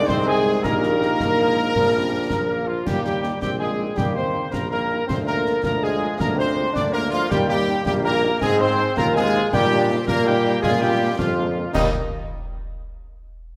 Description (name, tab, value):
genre	military-style march for wind band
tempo	108 BPM (dotted quarters)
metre	6/8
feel	straight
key	Eb major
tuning	A4 = 441 Hz
part	warm trumpet section	melody	0.0-11.9 s	Eb4 to D5	-29 LUFS	equal	none
part	warm euphonium	second line	0.0-11.9 s	Eb3 to D4	-28 LUFS	equal	none
part	warm woodwind section	second line	0.0-11.9 s	F4 to Eb5	-31 LUFS	equal	none
part	wooden piccolo	second line	0.0-11.9 s	F5 to Eb6	-31 LUFS	equal	none
part	dark French horn section	accompaniment	0.0-11.9 s	Eb3 to F4	-33 LUFS	equal	none
part	warm trombone section	sustained chords	0.0-11.9 s	F3 to F4	-32 LUFS	equal	none
part	warm tuba	bass	0.0-11.9 s	Bb1 to Bb2	-27 LUFS	equal	none
part	concert snare drum, concert bass drum and clash cymbals	drums	0.1-12.0 s	none	-31 LUFS	equal	none
room	wet scoring stage reverb, RT60 1.9 s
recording	none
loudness	-21 LUFS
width	mono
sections	0.0-11.7 A section; 11.7-12.9 B section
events	none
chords	0.0 Ab/C; 0.6 Eb/Bb; 1.8 Bb; 2.9 Eb; 5.1 Bb7/D; 7.3 Eb; 8.4 Ab; 9.5 Eb/Bb; 10.6 Bb7; 11.7 Eb